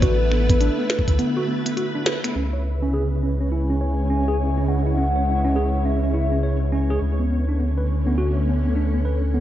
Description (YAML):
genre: IDM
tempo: 103 BPM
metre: 4/4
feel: swing 62% on 16ths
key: unclear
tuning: A4 = 438 Hz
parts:
  - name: warbly nostalgic lead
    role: melody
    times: 0.0-6.7 s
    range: B4 to G#5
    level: -28 LUFS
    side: left 2 dB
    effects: lush chorus, tape echo
  - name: soft string machine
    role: sustained chords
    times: 0.0-9.4 s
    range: C#3 to B4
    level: -26 LUFS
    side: equal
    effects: ensemble chorus
  - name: mellow tine electric piano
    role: arpeggios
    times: 0.0-9.4 s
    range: B3 to C#5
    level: -26 LUFS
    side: right 1 dB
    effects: medium stereo tremolo, low-pass filter, tape echo
  - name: warm sub bass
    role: bass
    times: 0.0-9.4 s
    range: A1 to D2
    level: -22 LUFS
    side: equal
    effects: none
  - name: electronic kick drum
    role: drums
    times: 0.0-1.2 s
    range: none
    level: -20 LUFS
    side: equal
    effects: studio reverb
  - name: glitchy drum kit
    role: drums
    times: 0.0-2.3 s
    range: finger snaps, hi-hat, snare drum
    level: -26 LUFS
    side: equal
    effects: studio reverb
  - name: flickering grainy texture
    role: texture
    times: 0.0-9.4 s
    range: C#4 to E5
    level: -34 LUFS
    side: equal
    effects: built-in reverb
room: light reverb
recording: dark, warm production, nothing above 7.5 kHz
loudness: -19 LUFS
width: side -12 dB against mid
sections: 0.0-2.4 A section; 2.4-9.4 B section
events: break 1.2-2.4; band accent 2.1; filter sweep on tine electric piano 2.4-9.4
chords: 0.0 Bm7; 2.4 C#m7; 7.0 Bm7/D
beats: | 0.02 0.61 1.19 1.77 | 2.35 2.94 3.52 4.10 | 4.68 5.27 5.85 6.43 | 7.01 7.60 8.18 8.76 | 9.34